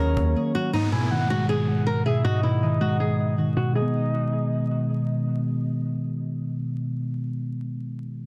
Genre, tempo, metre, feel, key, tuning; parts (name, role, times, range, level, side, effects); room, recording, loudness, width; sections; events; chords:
hip hop; 159 BPM; 4/4; half-time; G# minor; A4 = 440 Hz
flamenco guitar; melody; 0.0-4.8 s; D#4 to A#4; -32 LUFS; equal; low-pass filter, delay
soft octave-layered synth lead; second line; 0.0-4.8 s; C#5 to G#5; -35 LUFS; equal; chorus, delay
muted felt-like synth keys; accompaniment; 0.0-8.3 s; G#2 to C#4; -26 LUFS; equal; chorus, low-pass filter
downlifter; sound effects; 0.7-3.8 s; -38 LUFS; equal
light reverb; dense, heavily limited modern master, vinyl crackle; -25 LUFS; mono
0.7-3.8 A section; 3.8-6.8 B section
0.0 D#m7; 0.7 G#m